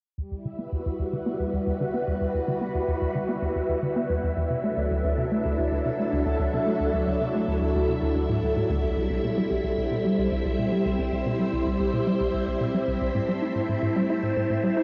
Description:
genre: ambient.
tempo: 111 BPM.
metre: 4/4.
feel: straight.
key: E minor.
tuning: A4 = 439 Hz.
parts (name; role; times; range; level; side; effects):
phased string machine; sustained chords; 0.2-14.8 s; F#3 to E5; -28 LUFS; equal; ensemble chorus, phaser.
resonant blip pluck; riff; 0.2-14.8 s; C2 to E4; -30 LUFS; equal; chorus, delay.
room: wet huge ambient reverb, RT60 8.0 s.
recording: dark, warm production, nothing above 7.8 kHz.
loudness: -26 LUFS.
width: mono.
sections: 0.2-14.8 A section.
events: filter sweep on synth arpeggio sound 0.2-14.8; filter sweep on string machine 0.2-14.8.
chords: 0.2 Emadd9; 4.5 Dadd9; 8.8 C; 13.2 Am.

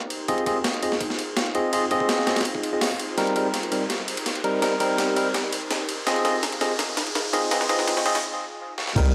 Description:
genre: drum and bass, jungle.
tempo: 166 BPM.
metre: 4/4.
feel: straight.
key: unclear.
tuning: A4 = 440 Hz.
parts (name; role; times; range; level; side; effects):
ethereal airy pad; sustained chords; 0.0-8.9 s; Eb4 to C5; -35 LUFS; equal; none.
riser; sound effects; 0.3-8.2 s; none; -36 LUFS; equal; none.
breakbeat sampler-style drum kit; drums; 0.1-9.1 s; crash cymbal, hi-hat, kick drum, ride cymbal, snare drum; -29 LUFS; equal; high-pass filter on cymbals, high-pass filter on kick, high-pass filter on snare, high-pass filter on hats, high-pass filter on room.
barky tine electric piano; stabs; 0.3-9.1 s; G3 to Eb5; -27 LUFS; equal; vintage 12-bit sampler grit, dub echo.
long sustained 808-style bass; bass; 9.0-9.1 s; C2; -23 LUFS; equal; none.
room: moderate digital room reverb, RT60 1.2 s, digital ambience.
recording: dry, gritty hardware recording, high-pass filter.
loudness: -24 LUFS.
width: mono.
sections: 0.0-9.0 A section.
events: build-up 0.0-9.0; filter sweep 0.0-9.0; riser 0.3-8.2; drum fill 3.2-8.2, 8.8; break 8.2-9.0.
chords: 0.3 Fm7; 3.2 Cm7; 6.1 Fm7.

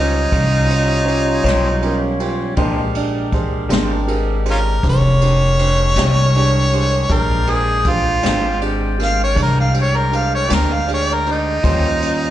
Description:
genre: slow blues.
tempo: 53 BPM (dotted quarters).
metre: 12/8.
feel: straight.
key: Bb mixolydian.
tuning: A4 = 440 Hz.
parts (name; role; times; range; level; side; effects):
clear harmonica; melody; 0.0-12.3 s; Db4 to F5; -18 LUFS; equal; overdrive, slapback echo.
warm concert grand piano; accompaniment; 0.0-12.3 s; Db4 to Bb5; -24 LUFS; right 5 dB; slapback echo.
tonewheel organ; sustained chords; 0.0-12.3 s; G3 to G5; -25 LUFS; left 1 dB; slow rotary speaker, overdrive.
upright bass; bass; 0.0-12.3 s; F1 to Eb2; -18 LUFS; equal; none.
jazz brush drum kit; drums; 0.3-12.2 s; kick drum, ride cymbal, snare drum; -23 LUFS; equal; none.
electric guitar through a small old amp; accompaniment; 1.4-11.9 s; Bb2 to C5; -25 LUFS; left 5 dB; harmonic tremolo, slapback echo.
room: light reverb.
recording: live gig heard through the venue's PA, club reverb, nothing above 10.4 kHz.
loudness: -14 LUFS.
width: side -12 dB against mid.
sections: 0.0-12.3 A section.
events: harmonica solo 0.0-12.3; grand piano fill 1.5-2.6.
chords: 0.0 Eb13; 2.6 Bb13; 11.6 Eb13.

